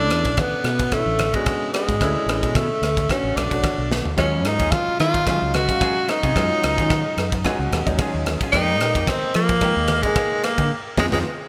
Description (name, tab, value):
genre	electric jazz fusion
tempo	110 BPM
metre	4/4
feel	swing 55% on 16ths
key	unclear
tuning	A4 = 440 Hz
part	clear tenor saxophone	melody	0.0-11.2 s	Ab3 to Gb4	-24 LUFS	equal	digital delay
part	warm baby grand piano	accompaniment	0.0-11.2 s	Gb3 to F5	-30 LUFS	equal	analog chorus
part	fretless electric bass	bass	0.0-11.2 s	A1 to F3	-26 LUFS	equal	analog chorus
part	modern studio drum kit	drums	0.1-11.2 s	kick drum, ride cymbal, rim click, snare drum, toms	-27 LUFS	equal	gated reverb
part	congas	percussion	0.4-11.2 s	none	-33 LUFS	equal	none
part	clean electric guitar	stabs	4.2-11.2 s	Gb3 to Ab4	-35 LUFS	equal	none
room	moderate lush hall reverb, RT60 2.5 s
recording	bright 1980s-style digital production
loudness	-21 LUFS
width	mono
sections	0.0-11.5 A section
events	drum fill 3.9; band accent 10.7-11.5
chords	0.0 Bm11; 4.2 Ebm11; 8.5 Fm11